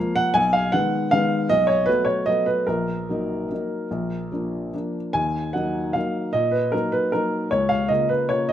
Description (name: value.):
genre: classical, piano waltz.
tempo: 140-164 BPM.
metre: 3/4.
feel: rubato.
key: Eb minor.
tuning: A4 = 441 Hz.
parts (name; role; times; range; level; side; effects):
warm upright piano; solo; 0.0-8.5 s; Bb1 to Ab5; -20 LUFS; equal; none.
room: light reverb.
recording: close, detailed microphones.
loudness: -20 LUFS.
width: side -10 dB against mid.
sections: 0.0-8.5 A section.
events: none.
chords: 0.3 Abm/Cb; 1.5 B5; 2.7 Ebm/Bb; 3.9 Bb; 5.2 Ebm; 7.5 Bbm/Db.